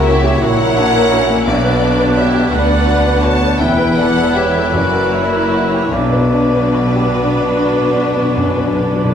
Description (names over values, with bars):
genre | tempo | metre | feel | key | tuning
classical | 48-58 BPM (dotted quarters) | 12/8 | rubato | B minor | A4 = 439 Hz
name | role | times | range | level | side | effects
rich studio violin section | melody | 0.0-9.1 s | B4 to A5 | -21 LUFS | left 4 dB | none
warm grand piano | melody | 0.0-9.1 s | B1 to B4 | -18 LUFS | left 2 dB | none
mellow clarinet | second line | 0.0-9.1 s | C#4 to F#4 | -25 LUFS | left 1 dB | none
mellow oboe | second line | 0.0-9.1 s | B4 to D5 | -22 LUFS | right 2 dB | none
rich chamber violin section | second line | 0.0-9.1 s | D4 to C#5 | -23 LUFS | left 3 dB | none
rich chamber viola section | accompaniment | 0.0-9.1 s | A#3 to E4 | -20 LUFS | equal | none
dark French horn section | sustained chords | 0.0-9.1 s | A#3 to E4 | -22 LUFS | left 2 dB | none
rich chamber double bass section | bass | 0.0-9.1 s | E1 to D2 | -21 LUFS | right 2 dB | none
warm chamber cello section | bass | 0.0-9.1 s | D2 to C#3 | -22 LUFS | right 2 dB | none
mellow flute section | second line | 0.1-9.1 s | F#4 to F#5 | -22 LUFS | right 1 dB | none
timpani | percussion | 5.9-9.1 s | B2 | -23 LUFS | left 1 dB | none
room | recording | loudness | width
wet recital hall reverb, RT60 1.3 s | heard from further back in the room | -11 LUFS | side -8 dB against mid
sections
0.0-9.1 A section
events
timpani fill 5.9-9.1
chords
0.0 F#7; 1.5 Bm; 3.6 Em; 4.7 F#7; 5.9 Bm